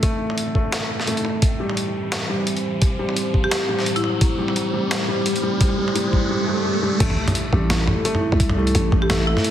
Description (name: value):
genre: half-time drum and bass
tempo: 172 BPM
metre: 4/4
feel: swing 56% on 16ths, half-time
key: A minor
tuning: A4 = 440 Hz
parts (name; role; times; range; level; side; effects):
- dark analog pad; sustained chords; 0.0-9.5 s; A3 to C5; -28 LUFS; right 1 dB; chorus, phaser, sidechain pumping
- felt-muted upright piano; arpeggios; 0.0-9.5 s; G3 to A3; -24 LUFS; equal; digital delay
- boom bap sampler-style drum kit; drums; 0.0-9.5 s; crash cymbal, hi-hat, snare drum, toms; -24 LUFS; equal; high-pass filter on hats, high-pass filter on toms, high-pass filter on snare, high-pass filter on cymbals, high-pass filter on room
- electronic kick drum; drums; 0.0-9.0 s; none; -19 LUFS; equal; none
- riser, swell and impact; sound effects; 0.0-8.4 s; none; -28 LUFS; right 1 dB; none
- marimba with hard mallets; melody; 3.4-4.4, 9.0-9.5 s; E4 to G4; -25 LUFS; left 1 dB; low-pass filter, digital delay
- growling 808-style bass; bass; 7.0-9.4 s; A1 to C2; -20 LUFS; equal; tube saturation
room: moderate lush hall reverb, RT60 1.8 s, digital ambience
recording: heavily compressed radio sound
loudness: -18 LUFS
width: side -11 dB against mid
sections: 0.0-7.0 A section; 7.0-9.5 B section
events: build-up 0.0-7.0; riser 0.0-7.0; filter sweep on analog synth pad 0.0-7.0; filter sweep on marimba 0.0-7.0; swell 6.3-7.0; drop 7.0-9.5; impact 7.0-8.4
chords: 0.0 Am